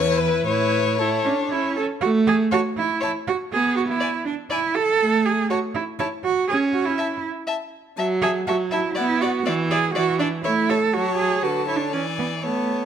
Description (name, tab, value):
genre	quick classical-period movement for string quartet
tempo	121 BPM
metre	3/4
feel	straight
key	A major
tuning	A4 = 440 Hz
part	warm violin	melody	0.0-12.9 s	A4 to A5	-29 LUFS	left 11 dB	none
part	rich violin	second line	0.0-12.9 s	B4 to E5	-27 LUFS	left 4 dB	none
part	clear viola	accompaniment	0.0-12.9 s	D3 to E4	-24 LUFS	right 3 dB	none
part	rich cello	bass	0.0-12.9 s	E2 to A4	-22 LUFS	right 5 dB	none
room	light reverb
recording	close, detailed microphones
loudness	-19 LUFS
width	side -8 dB against mid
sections	0.0-2.0 A section; 2.0-12.9 B section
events	none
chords	0.5 A; 2.0 A5; 3.5 E/B; 5.0 N.C.; 6.5 A/C# (rootless); 8.0 F#m7; 9.0 B5; 9.4 E7; 10.4 A; 10.9 F#m; 11.4 Bm7/D; 11.9 E7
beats	| 0.47 0.99 1.50 | 2.02 2.52 3.02 | 3.51 4.01 4.51 | 5.00 5.50 6.00 | 6.49 6.98 7.47 | 7.97 8.46 8.95 | 9.44 9.94 10.43 | 10.93 11.43 11.93 | 12.44